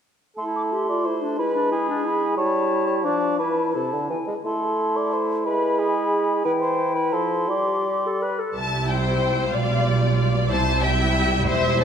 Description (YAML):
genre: classical, dramatic, fast romantic movement for symphony orchestra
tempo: 159-190 BPM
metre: 3/4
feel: rubato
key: A minor, C major from 6.4 s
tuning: A4 = 436 Hz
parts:
  - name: concert flute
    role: second line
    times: 0.4-8.4 s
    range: G5 to D6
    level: -29 LUFS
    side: left 1 dB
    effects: none
  - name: dark cor anglais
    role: second line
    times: 0.4-8.4 s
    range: G#4 to D5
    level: -25 LUFS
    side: equal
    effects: none
  - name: warm clarinet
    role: second line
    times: 0.4-8.6 s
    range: D4 to B4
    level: -27 LUFS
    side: equal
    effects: none
  - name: mellow bassoon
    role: accompaniment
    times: 0.4-8.4 s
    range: C3 to A3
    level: -27 LUFS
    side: right 1 dB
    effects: none
  - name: warm symphonic violin section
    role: melody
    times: 8.6-11.8 s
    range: C5 to A5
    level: -26 LUFS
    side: left 3 dB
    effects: none
  - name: warm studio viola section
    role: accompaniment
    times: 8.6-11.8 s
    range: G3 to F4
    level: -26 LUFS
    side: equal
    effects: none
  - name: warm symphonic cello section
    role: bass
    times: 8.6-11.8 s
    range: E2 to C3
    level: -26 LUFS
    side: right 3 dB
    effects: none
  - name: warm symphonic double bass section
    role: bass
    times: 8.6-11.8 s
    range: E1 to C2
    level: -24 LUFS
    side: right 3 dB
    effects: none
  - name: clear studio violin section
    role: second line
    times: 8.9-11.8 s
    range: A4 to E5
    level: -24 LUFS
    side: left 3 dB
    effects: none
room: wet scoring stage reverb, RT60 2.0 s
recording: minimal, uncompressed stereo recording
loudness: -20 LUFS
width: side -8 dB against mid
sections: 0.4-8.6 A section; 8.6-11.8 B section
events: none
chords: 0.4 Am; 1.4 E/G#; 2.4 A7/G; 3.0 Dm/F; 3.4 Am/E; 4.1 E; 4.4 Am; 5.5 E/G#; 6.4 Em; 7.1 Fmaj7; 7.5 Gsus4; 8.6 C; 9.5 G7/B; 10.5 C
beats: | 0.38 0.72 1.05 | 1.39 1.72 2.05 | 2.38 2.71 3.05 | 3.40 3.75 4.10 | 4.45 4.79 5.13 | 5.46 5.79 6.12 | 6.45 6.78 7.12 | 7.49 7.86 8.22 | 8.57 8.89 9.22 | 9.54 9.87 10.19 | 10.51 10.83 11.15 | 11.47 11.79